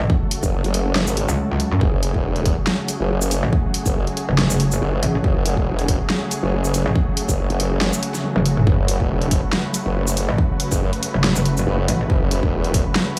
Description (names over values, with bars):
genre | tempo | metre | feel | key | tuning
heavy wobble dubstep | 140 BPM | 4/4 | swing 55% on 16ths, half-time | F# minor | A4 = 441 Hz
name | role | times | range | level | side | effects
supersaw chords | sustained chords | 0.0-13.2 s | C#3 to B4 | -28 LUFS | equal | sidechain pumping, low-pass filter
metallic wobble bass | bass | 0.0-12.1 s | E1 to F#2 | -22 LUFS | equal | chorus, overdrive
electronic kick drum | drums | 0.1-12.8 s | none | -23 LUFS | equal | studio reverb
dubstep drum kit | drums | 0.3-13.2 s | hi-hat, shaker, snare drum, toms | -25 LUFS | equal | studio reverb
formant-sweep wobble bass | bass | 0.4-12.8 s | E1 to G#1 | -24 LUFS | equal | chorus, overdrive
room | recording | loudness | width
little or no reverb | small room reverb | -20 LUFS | mono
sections
0.0-13.2 A section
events
kick drops out 7.8-8.7; drum fill 8.2-8.7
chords
0.0 F#m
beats
| 0.10 0.53 0.95 1.38 | 1.81 2.24 2.67 3.10 | 3.53 3.96 4.38 4.81 | 5.24 5.67 6.10 6.53 | 6.96 7.38 7.81 8.24 | 8.67 9.10 9.53 9.96 | 10.38 10.81 11.24 11.67 | 12.10 12.53 12.96